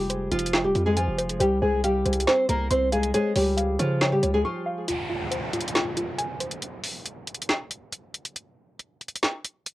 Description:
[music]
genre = hip hop, trap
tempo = 138 BPM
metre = 4/4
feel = half-time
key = F minor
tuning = A4 = 440 Hz
[part]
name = nylon-string guitar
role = melody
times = 0.0-4.9 s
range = F3 to C5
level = -24 LUFS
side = equal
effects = cassette tape, analog delay
[part]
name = soft round pluck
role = accompaniment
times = 0.0-6.6 s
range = F4 to Db6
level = -30 LUFS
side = equal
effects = chorus, cassette tape
[part]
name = hard-hitting 808-style bass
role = bass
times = 0.0-4.4 s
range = F1 to Db3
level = -27 LUFS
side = equal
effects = none
[part]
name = trap drum kit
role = drums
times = 0.1-9.7 s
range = hi-hat, snare drum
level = -27 LUFS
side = equal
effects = cassette tape
[part]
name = downlifter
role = sound effects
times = 4.9-8.4 s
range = none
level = -34 LUFS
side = right 1 dB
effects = none
[sound]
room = light reverb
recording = home recording on cassette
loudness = -22 LUFS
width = side -16 dB against mid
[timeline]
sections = 0.0-4.9 A section; 4.9-9.7 B section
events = break 4.4-4.9, 4.9-9.7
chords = 0.0 Fm; 1.4 Csus4; 3.1 Db; 4.9 Fm; 8.4 N.C.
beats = 0.10 0.53 0.97 | 1.40 1.84 2.27 2.71 | 3.14 3.58 4.01 4.45 | 4.88 5.32 5.75 6.18 | 6.62 7.05 7.49 7.92 | 8.36 8.79 9.23 9.66

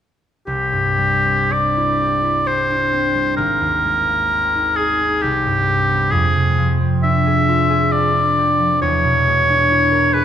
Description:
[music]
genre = classical, impressionist duo for oboe and harp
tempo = 55-69 BPM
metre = 3/4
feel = rubato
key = C mixolydian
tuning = A4 = 441 Hz
[part]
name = clear oboe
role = melody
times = 0.5-10.2 s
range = G4 to E5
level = -16 LUFS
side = equal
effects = none
[part]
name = concert harp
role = accompaniment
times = 0.5-10.2 s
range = Ab1 to A#4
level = -19 LUFS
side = equal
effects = none
[sound]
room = moderate scoring stage reverb, RT60 2.0 s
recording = none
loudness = -14 LUFS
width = side -9 dB against mid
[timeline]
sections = 0.5-10.2 A section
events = none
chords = 0.5 Cadd9; 3.4 Abadd9; 5.2 C5; 6.1 Fm6; 8.8 E7#11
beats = | 0.47 1.52 2.46 | 3.37 4.30 5.22 | 6.12 7.03 7.92 | 8.81 9.71

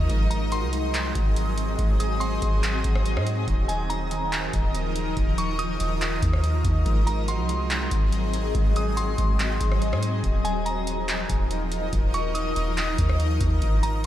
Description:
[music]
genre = hip hop, atmospheric cloud-rap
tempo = 142 BPM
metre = 4/4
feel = half-time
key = Eb dorian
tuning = A4 = 444 Hz
[part]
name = shimmering ambient pad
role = sustained chords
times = 0.0-14.1 s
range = F3 to Eb5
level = -29 LUFS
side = left 1 dB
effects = chorus, built-in reverb, phaser, sidechain pumping
[part]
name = mellow electric guitar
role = arpeggios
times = 0.0-10.2 s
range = Eb3 to Gb4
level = -37 LUFS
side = right 6 dB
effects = tape echo
[part]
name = soft 808-style bass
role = bass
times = 0.0-14.1 s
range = Eb1 to Ab2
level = -26 LUFS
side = equal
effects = none
[part]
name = booming analog drum machine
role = drums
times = 0.1-14.1 s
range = handclaps, hi-hat, kick drum, rim click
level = -27 LUFS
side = equal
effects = none
[part]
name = glassy synth bell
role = melody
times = 0.3-14.0 s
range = Ab5 to Eb6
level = -32 LUFS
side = left 1 dB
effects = chorus, tremolo, tape echo
[sound]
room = light reverb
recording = none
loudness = -22 LUFS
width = side -12 dB against mid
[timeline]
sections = 0.0-10.2 A section; 10.2-14.1 A section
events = none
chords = 0.1 Ab7; 3.5 Ebsus2; 6.9 Ab7; 10.2 Ebsus2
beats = | 0.10 0.52 0.94 1.36 | 1.79 2.21 2.63 3.06 | 3.48 3.90 4.32 4.75 | 5.17 5.59 6.01 6.43 | 6.86 7.28 7.70 8.12 | 8.55 8.97 9.39 9.82 | 10.24 10.66 11.08 11.51 | 11.93 12.35 12.77 13.20 | 13.62 14.04

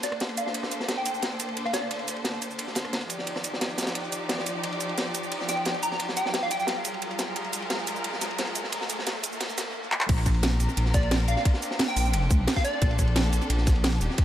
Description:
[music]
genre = liquid drum and bass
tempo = 176 BPM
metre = 4/4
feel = straight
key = Bb major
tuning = A4 = 437 Hz
[part]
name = plucky unison lead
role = melody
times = 0.0-2.0, 5.5-6.7, 10.9-12.9 s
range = D5 to Bb5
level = -31 LUFS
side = equal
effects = tape echo
[part]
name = rich studio string section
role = sustained chords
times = 0.0-14.2 s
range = F3 to D5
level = -33 LUFS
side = equal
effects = sidechain pumping
[part]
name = crunchy breakbeat drum kit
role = drums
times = 0.0-14.2 s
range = ride cymbal, snare drum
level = -32 LUFS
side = equal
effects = high-pass filter on cymbals, high-pass filter on snare, high-pass filter on room
[part]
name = drum and bass drum kit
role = drums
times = 0.0-14.2 s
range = cabasa, crash cymbal, handclaps, hi-hat, rim click, snare drum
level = -30 LUFS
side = right 2 dB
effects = overdrive, tape echo
[part]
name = riser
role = sound effects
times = 1.7-9.8 s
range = none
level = -40 LUFS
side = equal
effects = none
[part]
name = dark detuned saw bass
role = bass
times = 10.1-14.1 s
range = Eb1 to D2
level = -24 LUFS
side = equal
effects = none
[part]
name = electronic kick drum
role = drums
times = 10.1-14.2 s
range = none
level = -23 LUFS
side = equal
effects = overdrive
[sound]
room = light reverb, small room ambience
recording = echo-heavy mix, high-pass filter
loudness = -24 LUFS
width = side -11 dB against mid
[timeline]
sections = 0.0-10.1 A section; 10.1-14.2 B section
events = build-up 0.0-10.1; filter sweep on digital synth lead 0.0-10.1; riser 1.7-9.8; drum fill 9.9; drop 10.1-14.2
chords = 0.0 Bbmaj9; 3.1 Ebmaj9; 6.7 Gbmaj9; 10.1 Bbmaj9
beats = 0.20 | 0.55 0.89 1.23 1.57 | 1.91 2.25 2.59 2.93 | 3.27 3.61 3.95 4.29 | 4.64 4.98 5.32 5.66 | 6.00 6.34 6.68 7.02 | 7.36 7.70 8.04 8.39 | 8.73 9.07 9.41 9.75 | 10.09 10.43 10.77 11.11 | 11.45 11.79 12.14 12.48 | 12.82 13.16 13.50 13.84 | 14.18

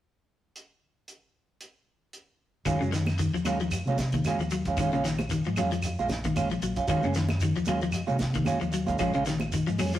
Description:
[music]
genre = afrobeat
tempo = 114 BPM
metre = 4/4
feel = swing 56% on 16ths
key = Eb dorian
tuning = A4 = 440 Hz
[part]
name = cloth-damped thuddy drum kit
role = drums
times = 0.6-10.0 s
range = hi-hat, kick drum, snare drum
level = -37 LUFS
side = equal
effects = none
[part]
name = electric guitar at the edge of break-up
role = arpeggios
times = 2.7-10.0 s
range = Db3 to Gb3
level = -29 LUFS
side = left 3 dB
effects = vibrato effect
[part]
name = semi-hollow electric guitar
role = stabs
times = 2.7-10.0 s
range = Gb3 to F4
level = -31 LUFS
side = right 4 dB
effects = none
[part]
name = fingered electric bass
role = bass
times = 2.7-10.0 s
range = Bb1 to C3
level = -32 LUFS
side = equal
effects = none
[part]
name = claves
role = percussion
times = 2.7-9.9 s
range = none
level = -41 LUFS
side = right 1 dB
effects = none
[part]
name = shekere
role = percussion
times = 2.7-10.0 s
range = none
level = -38 LUFS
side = right 1 dB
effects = none
[part]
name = congas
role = percussion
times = 3.1-9.9 s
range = none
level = -36 LUFS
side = right 2 dB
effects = none
[sound]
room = wet stone room reverb, RT60 1.1 s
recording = rough rehearsal-room recording, warm saturation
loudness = -25 LUFS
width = side -12 dB against mid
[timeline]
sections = 0.6-2.7 A section; 2.7-10.0 B section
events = none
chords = 0.6 N.C.; 2.7 Ebm11; 4.8 Bbm7; 6.9 Ebm11; 9.0 Bbm7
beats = | 0.55 1.08 1.61 2.14 | 2.67 3.19 3.72 4.25 | 4.78 5.30 5.83 6.36 | 6.89 7.42 7.94 8.47 | 9.00 9.53

